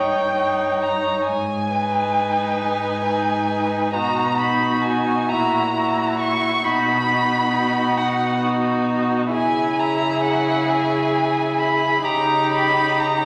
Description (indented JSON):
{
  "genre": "classical, slow romantic movement for string quartet",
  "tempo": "44 BPM (dotted quarters)",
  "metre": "6/8",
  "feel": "rubato",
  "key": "G# minor",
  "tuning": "A4 = 440 Hz",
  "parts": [
    { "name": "rich violin", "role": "melody", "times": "0.0-13.2 s", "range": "F#5 to C#6", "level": "-24 LUFS", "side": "equal", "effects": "none" },
    { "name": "rich violin", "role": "second line", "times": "0.0-13.2 s", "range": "F#4 to C#5", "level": "-26 LUFS", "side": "equal", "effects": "none" },
    { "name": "rich viola", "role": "accompaniment", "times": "0.0-13.2 s", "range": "D#4 to E4", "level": "-27 LUFS", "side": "equal", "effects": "none" },
    { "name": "warm cello", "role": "bass", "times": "0.0-13.2 s", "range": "G2 to C#3", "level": "-28 LUFS", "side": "equal", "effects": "none" }
  ],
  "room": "wet recital hall reverb, RT60 1.5 s",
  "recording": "none",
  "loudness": "-20 LUFS",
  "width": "mono",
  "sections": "0.0-13.2 A section",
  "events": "none",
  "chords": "0.0 D#7/G; 1.3 G#m; 3.9 B; 5.3 F#7/A#; 6.6 B; 9.3 C#m; 12.1 D#7/C#"
}